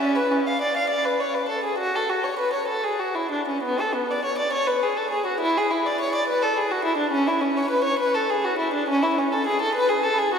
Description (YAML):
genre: classical, baroque-style suite movement for unaccompanied violin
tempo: 68 BPM (dotted quarters)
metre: 12/8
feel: rubato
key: unclear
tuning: A4 = 440 Hz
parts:
  - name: warm violin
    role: solo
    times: 0.0-10.4 s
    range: B3 to E#5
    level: -21 LUFS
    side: equal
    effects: none
room: wet cathedral reverb, RT60 5.4 s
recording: heard from further back in the room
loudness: -21 LUFS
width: side -7 dB against mid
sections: 0.0-10.4 A section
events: none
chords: none